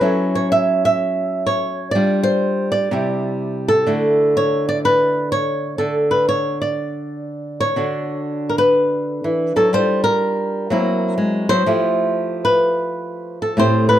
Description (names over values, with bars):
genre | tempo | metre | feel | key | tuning
solo jazz | 124 BPM | 4/4 | swing 66% on 8ths, rubato | D major | A4 = 440 Hz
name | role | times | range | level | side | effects
flamenco guitar | solo | 0.0-14.0 s | A2 to E5 | -16 LUFS | equal | none
room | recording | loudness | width
moderate club reverb, RT60 0.7 s | none | -16 LUFS | side -11 dB against mid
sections
0.0-7.8 A section; 7.8-14.0 B section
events
none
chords
0.0 F#m7; 1.9 G5; 2.9 Cadd9; 3.9 Dmaj9; 9.7 Gm7; 10.7 F#7#11; 11.7 Fmaj9